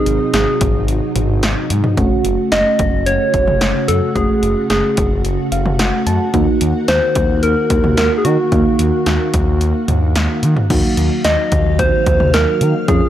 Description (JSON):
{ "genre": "synth-pop", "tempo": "110 BPM", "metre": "4/4", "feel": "straight", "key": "unclear", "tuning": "A4 = 436 Hz", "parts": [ { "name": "soft struck synth lead", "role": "melody", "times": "0.0-13.1 s", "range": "Gb4 to Eb5", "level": "-18 LUFS", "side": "equal", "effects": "chorus, tape echo" }, { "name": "mellow FM electric piano", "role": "accompaniment", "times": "0.0-13.1 s", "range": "A3 to A5", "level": "-22 LUFS", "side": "right 2 dB", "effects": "chorus, phaser" }, { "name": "ensemble organ-string", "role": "sustained chords", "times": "0.0-13.1 s", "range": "C3 to F5", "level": "-21 LUFS", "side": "equal", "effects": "ensemble chorus" }, { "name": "smooth gliding synth bass", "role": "bass", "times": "0.1-13.0 s", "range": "Gb1 to Eb3", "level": "-18 LUFS", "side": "equal", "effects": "none" }, { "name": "punchy analog drum machine", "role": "drums", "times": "0.1-13.0 s", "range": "crash cymbal, hi-hat, kick drum, snare drum, toms", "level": "-18 LUFS", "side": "equal", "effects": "none" } ], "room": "little or no reverb", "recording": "dry, gritty hardware recording, transformer saturation", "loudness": "-13 LUFS", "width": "side -11 dB against mid", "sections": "0.0-10.7 A section; 10.7-13.1 B section", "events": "FM electric piano fill 5.2-6.3", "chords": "0.0 Ab; 2.0 Gbm; 6.3 Ebmadd9" }